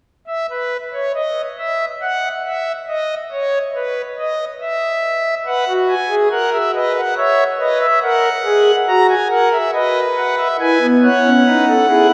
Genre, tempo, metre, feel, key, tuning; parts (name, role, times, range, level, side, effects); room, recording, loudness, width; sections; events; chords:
classical, baroque-style 4-part fugue for pipe organ; 70 BPM; 3/4; straight; A4 = 440 Hz
pipe organ, foundations; solo; 0.3-12.1 s; B3 to A#5; -16 LUFS; equal
wet cathedral reverb, RT60 4.5 s; recorded in a church or concert hall; -17 LUFS; mono
0.3-12.1 A section
0.3 N.C.; 5.5 B; 7.2 C#m7; 8.0 F#7; 9.7 B; 10.6 E